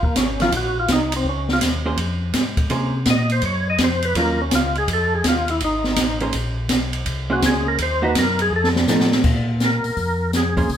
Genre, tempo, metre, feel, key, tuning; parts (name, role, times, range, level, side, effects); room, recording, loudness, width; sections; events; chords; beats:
soul jazz organ trio; 165 BPM; 4/4; swing 65% on 8ths; Bb minor; A4 = 439 Hz
percussive tonewheel organ; melody; 0.0-10.8 s; Bb3 to Eb5; -22 LUFS; left 1 dB; slow rotary speaker, overdrive, chorus vibrato
mellow tonewheel organ; bass; 0.0-10.8 s; Gb1 to C3; -24 LUFS; equal; chorus vibrato, slow rotary speaker
open jazz drum kit; drums; 0.0-10.8 s; crash cymbal, hi-hat, kick drum, ride cymbal, snare drum; -21 LUFS; equal
vintage hollow-body jazz guitar; accompaniment; 0.4-10.7 s; Eb3 to C5; -23 LUFS; right 2 dB
wet studio reverb, RT60 0.8 s; band playing live in one room; -17 LUFS; side -9 dB against mid
0.0-9.2 A section; 9.2-10.8 B section
tonewheel organ solo 0.0-9.2; drum fill 8.5-9.2
0.0 Ebm9; 2.0 Bbm9; 3.4 Gbmaj7; 4.9 F7#9; 6.3 Bbm9; 7.8 Ebmadd11; 8.5 F7; 9.2 Bbm7
0.16 | 0.53 0.89 1.25 1.62 | 1.98 2.34 2.71 3.07 | 3.43 3.80 4.16 4.52 | 4.89 5.25 5.61 5.98 | 6.34 6.70 7.07 7.43 | 7.79 8.15 8.52 8.88 | 9.24 9.61 9.97 10.34 | 10.70